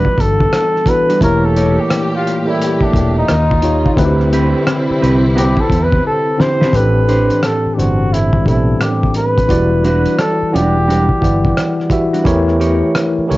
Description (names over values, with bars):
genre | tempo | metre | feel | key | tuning
R&B, neo-soul | 87 BPM | 4/4 | swing 62% on 16ths | A dorian | A4 = 440 Hz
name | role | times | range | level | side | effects
warm flugelhorn | melody | 0.0-11.9 s | D4 to C5 | -17 LUFS | equal | cassette tape
mellow electric guitar | second line | 0.0-12.9 s | G3 to C#5 | -20 LUFS | right 3 dB | spring reverb
tine electric piano | accompaniment | 0.0-13.4 s | A2 to F#5 | -16 LUFS | equal | medium stereo tremolo
fretless electric bass | bass | 0.0-13.4 s | E1 to E2 | -16 LUFS | equal | transformer saturation, wide subtle chorus
cloth-damped thuddy drum kit | drums | 0.0-13.4 s | hi-hat, kick drum, rim click, snare drum | -18 LUFS | equal | cassette tape
warm studio string section | sustained chords | 1.2-6.7 s | Bb2 to G4 | -22 LUFS | left 1 dB | none
room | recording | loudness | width
light reverb | home recording on cassette, nothing above 7.6 kHz | -11 LUFS | side -18 dB against mid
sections
0.0-6.7 A section; 6.7-13.4 B section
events
flugelhorn solo 0.0-6.7; drum fill 6.0-6.7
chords
0.0 Em9; 1.2 A7b9/E; 3.3 D#9; 4.0 D13sus4; 6.7 Am11; 9.5 Em9; 12.3 A7b9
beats
0.53 | 1.22 1.91 2.60 3.29 | 3.98 4.67 5.36 6.04 | 6.73 7.42 8.11 8.80 | 9.49 10.18 10.87 11.56 | 12.25 12.94